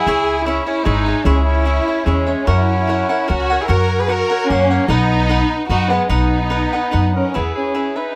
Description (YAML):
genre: mexican folk, mariachi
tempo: 148 BPM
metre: 3/4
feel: rubato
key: B major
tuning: A4 = 439 Hz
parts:
  - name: dark chamber violin section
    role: melody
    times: 0.0-8.2 s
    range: B3 to B4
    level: -22 LUFS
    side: equal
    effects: none
  - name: clear trumpet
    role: second line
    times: 0.0-8.2 s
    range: G#3 to B4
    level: -26 LUFS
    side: equal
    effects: none
  - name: cavaquinho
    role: accompaniment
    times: 0.0-8.2 s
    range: D#4 to F#5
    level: -24 LUFS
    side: equal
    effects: none
  - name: upright bass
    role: bass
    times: 0.1-7.5 s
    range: G#1 to F#2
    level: -20 LUFS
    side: equal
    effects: none
room: light reverb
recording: close, detailed microphones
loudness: -17 LUFS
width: mono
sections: 0.0-7.3 A section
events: none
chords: 0.1 C#m; 2.5 F#; 4.9 B; 7.3 E